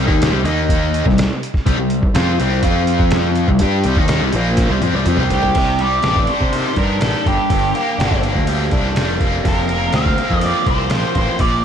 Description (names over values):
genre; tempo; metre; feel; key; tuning
psychedelic rock; 123 BPM; 4/4; straight; C dorian; A4 = 438 Hz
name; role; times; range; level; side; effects
biting overdriven guitar; riff; 0.0-11.6 s; F2 to G4; -18 LUFS; left 1 dB; harmonic tremolo
fuzz picked electric bass; bass; 0.0-11.6 s; F1 to C3; -19 LUFS; equal; overdrive
trip hop sampler-style drum kit; drums; 0.1-11.5 s; crash cymbal, hi-hat, kick drum, ride cymbal, snare drum, toms; -20 LUFS; equal; none
octave-fuzz lead guitar; melody; 5.3-11.6 s; G4 to F5; -20 LUFS; right 2 dB; distortion, diffuse ambient delay
room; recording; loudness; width
moderate lush hall reverb, RT60 2.0 s; dreamy mix soaked in reverb; -14 LUFS; side -8 dB against mid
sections
0.0-5.6 A section; 5.6-11.6 B section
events
drum fill 4.6-5.6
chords
0.5 Eb5; 1.1 C5; 2.6 F5; 3.5 Cm; 5.6 Cmadd9; 7.3 Gm; 9.5 Fsus4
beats
0.21 0.70 1.18 | 1.67 2.16 2.64 3.13 | 3.62 4.10 4.59 5.07 | 5.56 6.05 6.53 7.02 | 7.51 8.00 8.48 8.97 | 9.46 9.95 10.43 10.92 | 11.40